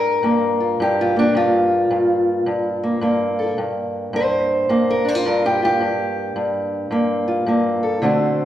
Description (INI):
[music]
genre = acoustic country blues, solo or duo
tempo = 108 BPM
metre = 4/4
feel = swing 65% on 8ths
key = G minor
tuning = A4 = 441 Hz
[part]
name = fingerpicked steel-string acoustic guitar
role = solo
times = 0.0-8.4 s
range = G2 to C5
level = -17 LUFS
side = equal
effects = none
[sound]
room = wet recital hall reverb, RT60 1.4 s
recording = recorded in a church or concert hall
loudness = -17 LUFS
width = side -12 dB against mid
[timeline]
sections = 0.0-8.4 A section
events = none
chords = 0.0 Gm7